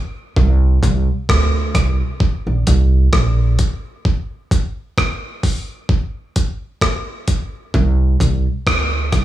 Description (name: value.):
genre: dub reggae.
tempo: 65 BPM.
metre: 4/4.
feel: swing 56% on 16ths.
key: unclear.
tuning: A4 = 439 Hz.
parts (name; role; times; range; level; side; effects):
upright bass; bass; 0.4-9.2 s; Bb1 to D2; -14 LUFS; right 1 dB; none.
breakbeat sampler-style drum kit; drums; 0.4-9.2 s; hi-hat, kick drum, rim click; -17 LUFS; equal; none.
room: light reverb.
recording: studio ambience.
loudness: -15 LUFS.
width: side -13 dB against mid.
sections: 0.0-7.7 A section; 7.7-9.2 B section.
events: break 4.0-7.7.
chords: none.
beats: | 0.36 1.28 2.21 3.13 | 4.05 4.97 5.89 6.82 | 7.74 8.66.